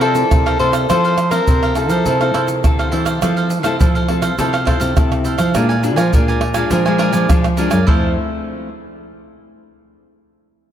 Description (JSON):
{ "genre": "samba and choro", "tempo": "103 BPM", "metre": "4/4", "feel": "straight", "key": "F major", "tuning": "A4 = 438 Hz", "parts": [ { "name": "warm soprano saxophone", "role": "melody", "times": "0.0-2.6 s", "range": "A4 to C5", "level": "-18 LUFS", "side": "left 2 dB", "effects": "ping-pong delay" }, { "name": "cavaquinho", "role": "accompaniment", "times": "0.0-8.1 s", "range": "D4 to Ab5", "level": "-23 LUFS", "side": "right 3 dB", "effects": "none" }, { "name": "nylon-string guitar", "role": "accompaniment", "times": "0.0-8.7 s", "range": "Bb2 to A4", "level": "-22 LUFS", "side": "left 4 dB", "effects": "wide subtle chorus" }, { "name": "nylon-string guitar", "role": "bass", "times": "0.0-8.2 s", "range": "F2 to F3", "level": "-18 LUFS", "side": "right 1 dB", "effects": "none" }, { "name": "pandeiro, tamborim, egg shaker and surdo", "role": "percussion", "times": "0.0-8.0 s", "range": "none", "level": "-18 LUFS", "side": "right 1 dB", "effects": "none" } ], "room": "moderate plate reverb, RT60 3.3 s", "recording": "dreamy mix soaked in reverb", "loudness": "-13 LUFS", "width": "side -10 dB against mid", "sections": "0.0-3.2 A section; 3.2-7.9 B section; 7.9-10.2 C section", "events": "none", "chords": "0.0 Fmaj7; 5.6 Bb7; 7.9 Fmaj7", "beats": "0.31 | 0.90 1.48 2.06 2.64 | 3.23 3.81 4.39 4.97 | 5.55 6.14 6.72 7.30 | 7.88 8.46" }